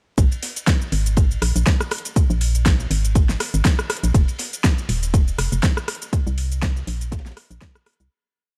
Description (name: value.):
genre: deep house.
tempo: 121 BPM.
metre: 4/4.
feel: swing 56% on 16ths.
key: unclear.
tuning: A4 = 440 Hz.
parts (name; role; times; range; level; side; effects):
organ-like FM bass; bass; 0.2-8.1 s; Eb1 to C2; -23 LUFS; equal; sidechain pumping.
deep house drum kit; drums; 0.2-8.1 s; hi-hat, rim click, shaker, snare drum; -27 LUFS; equal; none.
deep reggae drum kit; drums; 0.2-8.0 s; ride cymbal, snare drum; -40 LUFS; equal; high-pass filter on cymbals, high-pass filter on snare, high-pass filter on room.
electronic kick drum; drums; 0.2-7.7 s; none; -20 LUFS; equal; none.
room: small room reverb.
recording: dry, gritty hardware recording, vinyl crackle.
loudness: -20 LUFS.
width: mono.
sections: 0.2-8.1 drop.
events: drop 0.2-8.1; fade-out 5.5-8.1.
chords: none.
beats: | 0.18 0.67 1.17 1.67 | 2.16 2.66 3.15 3.65 | 4.14 4.64 5.14 5.63 | 6.13 6.62 7.12 7.62.